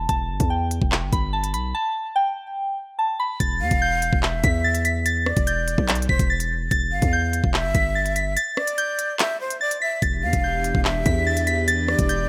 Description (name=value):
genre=hip hop, drill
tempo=145 BPM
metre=4/4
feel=half-time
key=E phrygian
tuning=A4 = 441 Hz
part: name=soft synth bell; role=melody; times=0.0-12.3 s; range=G5 to B6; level=-27 LUFS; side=equal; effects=chorus, phaser
part: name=hard-hitting 808-style bass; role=bass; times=0.0-12.3 s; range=E1 to E2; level=-27 LUFS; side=equal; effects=none
part: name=drill drum kit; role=drums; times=0.1-12.2 s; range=handclaps, hi-hat, kick drum, rim click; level=-26 LUFS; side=equal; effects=none
part: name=breathy jazz flute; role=second line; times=3.6-12.3 s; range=C5 to F5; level=-30 LUFS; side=equal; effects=digital delay
part: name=airy breathy pad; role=sustained chords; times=10.0-12.3 s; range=E3 to G4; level=-31 LUFS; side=equal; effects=chorus
room=little or no reverb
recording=none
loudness=-22 LUFS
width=mono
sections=0.0-3.4 A section; 3.4-12.3 B section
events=kick muted 8.4-10.0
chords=0.0 Em; 3.4 Em7